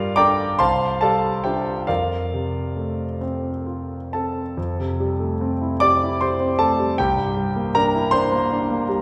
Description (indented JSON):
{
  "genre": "classical, impressionist solo piano",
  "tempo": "44-52 BPM (dotted quarters)",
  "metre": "6/8",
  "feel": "rubato",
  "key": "F major",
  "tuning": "A4 = 440 Hz",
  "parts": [
    { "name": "clear concert grand piano", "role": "solo", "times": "0.0-9.0 s", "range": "C2 to D6", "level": "-21 LUFS", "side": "equal", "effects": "none" }
  ],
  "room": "wet recital hall reverb, RT60 1.4 s",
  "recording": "recorded in a church or concert hall",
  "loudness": "-21 LUFS",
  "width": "mono",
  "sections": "0.0-4.6 A section; 4.6-9.0 B section",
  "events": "none",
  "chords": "0.0 Gm9; 0.6 Csus24; 1.9 F; 4.6 Fmaj9; 7.0 C9"
}